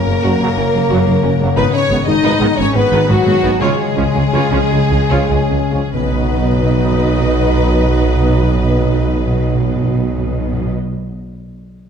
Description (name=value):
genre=cinematic, heroic adventure film score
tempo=93-121 BPM (dotted quarters)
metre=12/8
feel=straight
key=B lydian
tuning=A4 = 440 Hz
part: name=rich symphonic violin section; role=melody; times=0.0-10.7 s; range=F#4 to D#5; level=-26 LUFS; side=left 2 dB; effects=none
part: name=warm symphonic violin section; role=second line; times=0.0-10.7 s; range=F#4 to D#5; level=-23 LUFS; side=left 2 dB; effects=none
part: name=dark French horn section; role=sustained chords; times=0.0-10.7 s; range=F#3 to D#4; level=-19 LUFS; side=left 2 dB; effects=none
part: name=concert harp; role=arpeggios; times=0.0-11.1 s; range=F#2 to F#5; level=-21 LUFS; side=left 8 dB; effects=none
part: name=timpani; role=percussion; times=0.0, 5.9-10.7 s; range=B2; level=-21 LUFS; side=equal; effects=none
part: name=dark symphonic viola section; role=accompaniment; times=0.1-10.7 s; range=G#3 to D#5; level=-24 LUFS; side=right 1 dB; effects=none
part: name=clear tuba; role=bass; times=0.1-10.7 s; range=F#1 to C#2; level=-23 LUFS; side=right 3 dB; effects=none
part: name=warm symphonic cello section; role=bass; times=0.1-10.7 s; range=F#2 to C#3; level=-21 LUFS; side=right 3 dB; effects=none
part: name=warm symphonic double bass section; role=bass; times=0.1-10.7 s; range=F#1 to C#2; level=-19 LUFS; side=right 2 dB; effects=none
part: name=mellow trombone section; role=sustained chords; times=0.4-10.7 s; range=C#3 to D#4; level=-24 LUFS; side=right 4 dB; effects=none
room=wet scoring stage reverb, RT60 1.6 s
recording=dark, warm production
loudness=-12 LUFS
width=side -7 dB against mid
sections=0.0-5.9 A section; 5.9-11.0 B section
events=slowing down 2.2-5.9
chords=0.0 F#; 1.6 G#m; 3.6 C#; 5.9 B